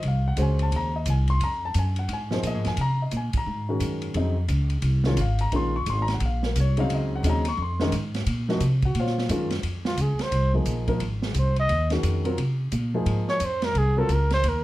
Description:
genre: modal jazz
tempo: 175 BPM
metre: 4/4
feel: swing 63% on 8ths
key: unclear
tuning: A4 = 445 Hz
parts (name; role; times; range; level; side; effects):
- dark grand piano; accompaniment; 0.0-14.1 s; Db3 to Db6; -28 LUFS; left 1 dB; none
- upright bass; bass; 0.0-14.6 s; Ab1 to C3; -24 LUFS; equal; none
- open jazz drum kit; drums; 0.0-14.5 s; hi-hat, kick drum, ride cymbal, snare drum; -33 LUFS; right 2 dB; none
- breathy trumpet; melody; 9.9-14.6 s; F4 to Eb5; -26 LUFS; right 1 dB; none
room: light reverb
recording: dark, warm production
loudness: -22 LUFS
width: side -16 dB against mid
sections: 0.0-9.6 A section; 9.6-14.6 A section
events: trumpet solo 9.6-14.6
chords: 0.0 Bbmadd9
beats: | 0.04 0.38 0.72 1.07 | 1.41 1.75 2.10 2.44 | 2.78 3.12 3.47 3.81 | 4.15 4.50 4.84 5.18 | 5.53 5.87 6.21 6.55 | 6.90 7.24 7.58 7.92 | 8.27 8.61 8.95 9.30 | 9.64 9.98 10.32 10.67 | 11.01 11.35 11.70 12.04 | 12.38 12.73 13.07 13.41 | 13.76 14.10 14.44

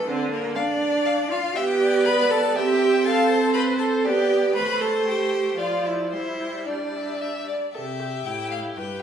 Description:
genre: quick classical-period movement for string quartet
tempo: 119 BPM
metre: 3/4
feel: rubato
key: C major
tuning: A4 = 440 Hz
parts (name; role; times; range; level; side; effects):
- rich violin; melody; 0.0-9.0 s; Bb4 to B5; -29 LUFS; left 7 dB; none
- rich cello; bass; 0.0-9.0 s; G2 to B4; -23 LUFS; right 4 dB; none
- rich viola; accompaniment; 0.1-9.0 s; D3 to A4; -28 LUFS; right 2 dB; none
- warm violin; second line; 0.6-9.0 s; G4 to F5; -27 LUFS; left 2 dB; none
room: wet recital hall reverb, RT60 1.5 s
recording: studio reverb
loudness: -20 LUFS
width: side -8 dB against mid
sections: 0.0-7.7 A section; 7.7-9.0 B section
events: none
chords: 0.1 Dm; 1.6 G/B; 2.6 C; 3.1 Amadd9/C; 4.1 G/B; 4.6 Am; 5.6 Dm/F; 6.1 Gsus4; 7.2 G5; 7.7 C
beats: | 0.07 0.56 1.06 | 1.56 2.06 2.56 | 3.05 3.55 4.05 | 4.56 5.07 5.59 | 6.13 6.67 7.21 | 7.75 8.27 8.78

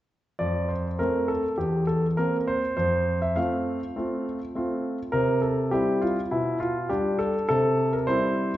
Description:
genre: classical-period piano sonatina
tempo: 102 BPM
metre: 4/4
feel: rubato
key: F major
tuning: A4 = 441 Hz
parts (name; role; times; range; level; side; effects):
- clear concert grand piano; solo; 0.4-8.6 s; E2 to F5; -23 LUFS; equal; none
room: wet recital hall reverb, RT60 1.4 s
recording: heard from further back in the room, nothing above 7.9 kHz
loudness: -23 LUFS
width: side -14 dB against mid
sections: 0.4-8.6 A section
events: none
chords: 0.4 F; 1.6 C7/E; 2.8 F; 5.1 C; 6.3 G/B; 7.5 C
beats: | 0.39 0.99 1.58 2.18 | 2.77 3.36 3.95 4.54 | 5.13 5.72 6.31 6.90 | 7.49 8.07

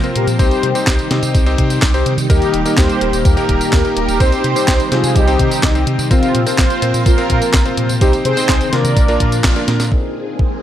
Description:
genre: italo disco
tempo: 126 BPM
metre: 4/4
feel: straight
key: unclear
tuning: A4 = 440 Hz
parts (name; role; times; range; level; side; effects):
- mellow synth brass; melody; 0.0-9.6 s; C4 to D5; -18 LUFS; right 1 dB; chorus, digital delay
- phased string machine; sustained chords; 0.0-10.6 s; Bb2 to G5; -22 LUFS; equal; ensemble chorus, phaser, vintage 12-bit sampler grit
- clear electric grand piano; stabs; 0.0-10.6 s; Bb3 to G5; -20 LUFS; left 3 dB; low-pass filter
- round analog bass; bass; 0.0-9.9 s; Eb1 to C3; -18 LUFS; equal; none
- clean 12-bit digital drum machine; drums; 0.0-9.9 s; handclaps, hi-hat, snare drum, tambourine; -20 LUFS; equal; none
- electronic kick drum; drums; 0.4-10.5 s; none; -15 LUFS; equal; none
room: light reverb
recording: none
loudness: -12 LUFS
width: side -11 dB against mid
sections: 0.0-9.9 A section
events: band accent 9.4; drum fill 9.7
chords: 0.4 Cm; 2.3 Eb; 4.2 Cm; 6.1 Bbsus2; 8.0 Cm; 9.0 Bb; 9.9 Abadd9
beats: | 0.40 0.87 1.35 1.82 | 2.30 2.78 3.25 3.73 | 4.20 4.68 5.16 5.63 | 6.11 6.58 7.06 7.54 | 8.01 8.49 8.97 9.44 | 9.92 10.39

